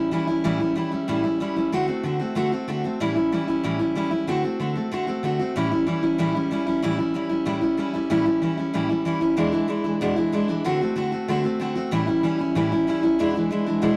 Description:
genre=rock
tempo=188 BPM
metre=4/4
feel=straight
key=A mixolydian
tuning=A4 = 440 Hz
part: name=picked steel-string acoustic guitar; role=solo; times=0.0-14.0 s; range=E2 to F#4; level=-24 LUFS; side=equal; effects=none
room=moderate stone room reverb, RT60 1.2 s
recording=rough rehearsal-room recording, tube saturation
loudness=-24 LUFS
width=mono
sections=0.0-14.0 A section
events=none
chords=0.0 A7; 1.7 D7; 3.0 A7; 4.3 D7; 5.5 A7; 9.4 E7; 10.6 D7; 11.9 A7; 13.2 E7

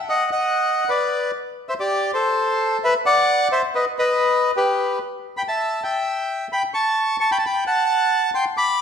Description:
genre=tango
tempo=131 BPM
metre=4/4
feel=rubato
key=unclear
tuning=A4 = 440 Hz
part: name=bandoneon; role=solo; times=0.1-8.8 s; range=G4 to D6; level=-18 LUFS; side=equal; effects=none
room=wet recital hall reverb, RT60 1.5 s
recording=recorded in a church or concert hall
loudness=-18 LUFS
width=side -7 dB against mid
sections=0.0-8.8 A section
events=none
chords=0.1 B; 1.0 G/B; 1.9 C5; 2.8 Bmadd11; 3.7 B; 5.6 N.C.; 6.5 A7; 7.4 F#madd11

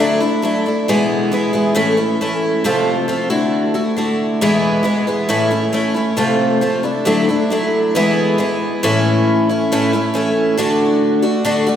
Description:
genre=rock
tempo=136 BPM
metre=4/4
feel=straight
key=A major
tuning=A4 = 440 Hz
part: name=picked twelve-string acoustic guitar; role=solo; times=0.0-11.8 s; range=E2 to F#4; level=-14 LUFS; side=equal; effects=none
room=wet church reverb, RT60 3.1 s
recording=recorded in a church or concert hall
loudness=-14 LUFS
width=side -9 dB against mid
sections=0.0-8.8 A section; 8.8-11.8 B section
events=none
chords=0.0 Dadd9; 0.9 E; 1.7 A; 2.6 F; 3.3 Dadd9; 4.4 E; 5.3 A; 6.2 F; 6.8 Dadd9; 7.9 E; 8.8 A; 10.6 D

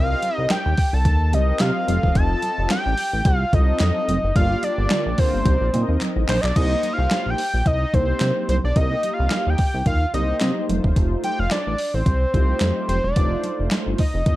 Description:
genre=early-eighties boogie funk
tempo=109 BPM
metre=4/4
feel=swing 56% on 16ths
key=C dorian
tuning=A4 = 440 Hz
part: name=fat analog lead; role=melody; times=0.0-14.4 s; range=C5 to A5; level=-24 LUFS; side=equal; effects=slapback echo, plate reverb
part: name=mellow synth brass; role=accompaniment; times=0.0-14.0 s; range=A3 to Eb5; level=-28 LUFS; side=left 1 dB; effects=chorus, plate reverb
part: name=chorused synth bass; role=bass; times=0.0-14.4 s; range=E1 to C3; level=-21 LUFS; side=equal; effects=none
part: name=crisp 8-bit digital drum machine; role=drums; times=0.2-14.4 s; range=crash cymbal, handclaps, hi-hat, kick drum, snare drum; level=-22 LUFS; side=equal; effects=overdrive
part: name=congas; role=percussion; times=0.2-14.4 s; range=none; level=-30 LUFS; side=right 2 dB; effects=none
part: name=analog synth brass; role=second line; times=4.9-5.5 s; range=D3 to F4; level=-29 LUFS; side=equal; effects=chorus, plate reverb
room=little or no reverb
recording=dark, warm production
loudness=-18 LUFS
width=side -16 dB against mid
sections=0.0-6.6 A section; 6.6-14.4 B section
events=band accent 4.4-6.6; drum fill 6.0-6.6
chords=0.0 Cm7; 1.9 F7; 4.4 Gm7; 5.5 Cm9; 6.6 Cm7; 10.7 F7

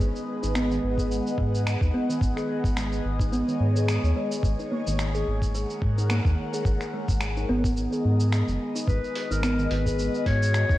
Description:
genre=organic downtempo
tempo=108 BPM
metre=4/4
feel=swing 55% on 16ths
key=G# minor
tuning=A4 = 440 Hz
part: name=airy breathy pad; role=sustained chords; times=0.0-10.8 s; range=G#3 to F#5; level=-33 LUFS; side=left 1 dB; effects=chorus, phaser, sidechain pumping
part: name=buzzing kalimba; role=arpeggios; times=0.0-10.8 s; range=D#3 to G#4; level=-29 LUFS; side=equal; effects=tape echo
part: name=round analog bass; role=bass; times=0.0-10.8 s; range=F#1 to G#2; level=-25 LUFS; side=equal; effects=tube saturation
part: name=dusty soul sampler-style drum kit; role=drums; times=0.0-10.8 s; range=finger snaps, hi-hat, shaker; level=-35 LUFS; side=equal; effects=none
part: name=electronic kick drum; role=drums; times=1.0-10.8 s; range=none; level=-26 LUFS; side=equal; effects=none
part: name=warm clarinet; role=melody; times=8.9-10.8 s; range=A#4 to C#5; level=-29 LUFS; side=left 3 dB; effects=none
room=moderate recital hall reverb, RT60 1.4 s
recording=worn, warbling old tape, cassette tape, warbly pitch drift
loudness=-23 LUFS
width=side -15 dB against mid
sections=0.0-10.8 A section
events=none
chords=0.0 G#m7; 2.2 Badd9/G#; 4.4 F#add9/G#; 6.7 G#madd9; 8.9 C#7sus4/G#

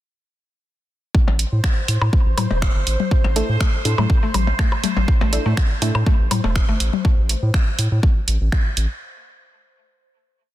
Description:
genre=minimal techno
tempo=122 BPM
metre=4/4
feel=swing 53% on 16ths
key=A minor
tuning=A4 = 440 Hz
part: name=electronic kick drum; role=drums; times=1.1-8.6 s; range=none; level=-17 LUFS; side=equal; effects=none
part: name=bubbling stepped-filter texture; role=texture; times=1.5-7.1 s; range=C5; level=-31 LUFS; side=right 3 dB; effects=chorus, built-in reverb, sidechain pumping
part: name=round analog bass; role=bass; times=1.3-8.9 s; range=E1 to A2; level=-19 LUFS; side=equal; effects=sidechain pumping
part: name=electronic percussion blips, claves and toms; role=percussion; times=1.3-7.0 s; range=none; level=-24 LUFS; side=left 6 dB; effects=dub echo
part: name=house drum kit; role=drums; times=1.4-8.9 s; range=finger snaps, hi-hat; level=-27 LUFS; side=right 2 dB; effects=soft clipping on snare
part: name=mallet-like synth pluck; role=riff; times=3.4-6.7 s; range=A3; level=-29 LUFS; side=right 2 dB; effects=chorus, sidechain pumping, ping-pong delay
part: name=filtered dub chord stab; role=stabs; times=3.4-5.9 s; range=D4 to A4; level=-28 LUFS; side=equal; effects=chorus, dub echo
room=digital ambience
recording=dense, heavily limited modern master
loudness=-16 LUFS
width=side -14 dB against mid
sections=1.1-9.0 groove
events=none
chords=1.1 A5

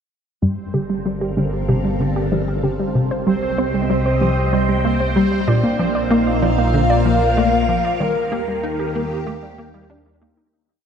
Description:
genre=ambient, sequencer-driven space music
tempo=95 BPM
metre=4/4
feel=straight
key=unclear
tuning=A4 = 440 Hz
part: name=phased string machine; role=sustained chords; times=0.4-10.5 s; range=Bb2 to G5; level=-24 LUFS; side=left 1 dB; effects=ensemble chorus, phaser
part: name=wide unison pluck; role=arpeggios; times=0.4-10.5 s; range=G3 to D5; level=-24 LUFS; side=right 1 dB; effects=auto-pan, tape echo
part: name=tight sequencer bass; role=riff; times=0.4-10.4 s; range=G2 to Eb4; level=-21 LUFS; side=equal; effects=ensemble chorus, tape echo
part: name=analog drone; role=bass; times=1.0-10.5 s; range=G1 to Eb2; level=-23 LUFS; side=equal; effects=chorus, phaser
part: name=bubbling stepped-filter texture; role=texture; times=0.4-10.5 s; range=C4 to C5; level=-27 LUFS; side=right 1 dB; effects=chorus, built-in reverb
part: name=soft octave-layered synth lead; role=melody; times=5.5-10.2 s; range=Bb4 to F5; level=-23 LUFS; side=left 1 dB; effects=chorus, tape echo
room=moderate plate reverb, RT60 3.4 s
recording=dreamy mix soaked in reverb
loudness=-16 LUFS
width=side -7 dB against mid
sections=0.4-10.5 A section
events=fade-in on string machine 0.4-10.5; fade-out 7.2-10.5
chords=0.4 Gm7; 3.0 Cm; 5.5 Bb; 8.0 Ebmaj7

